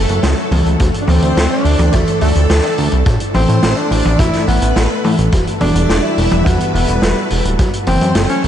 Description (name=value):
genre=synthwave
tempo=106 BPM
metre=4/4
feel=straight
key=E minor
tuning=A4 = 440 Hz
part: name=breathy alto saxophone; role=melody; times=0.0-8.4 s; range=A3 to E4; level=-20 LUFS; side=equal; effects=vintage 12-bit sampler grit, tape echo
part: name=string machine, violins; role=second line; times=0.0-8.4 s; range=A4 to E5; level=-24 LUFS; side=equal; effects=ensemble chorus, tape echo
part: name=analog string pad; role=sustained chords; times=0.0-8.5 s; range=E3 to D5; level=-21 LUFS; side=equal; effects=ensemble chorus, sidechain pumping
part: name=chorused synth bass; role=bass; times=0.0-8.5 s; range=D1 to A2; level=-15 LUFS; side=equal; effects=sidechain pumping
part: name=street-band drum kit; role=drums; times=0.1-8.5 s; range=hi-hat, snare drum, toms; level=-18 LUFS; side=equal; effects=none
part: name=kick drum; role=drums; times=0.8-7.7 s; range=none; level=-18 LUFS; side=equal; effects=none
room=moderate huge ambient reverb, RT60 7.8 s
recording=dreamy mix soaked in reverb, nothing above 10.6 kHz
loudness=-11 LUFS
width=side -10 dB against mid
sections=0.0-8.5 A section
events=none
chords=0.0 F#m; 0.8 Dsus2; 3.1 Asus2; 5.3 Emadd9; 7.6 F#m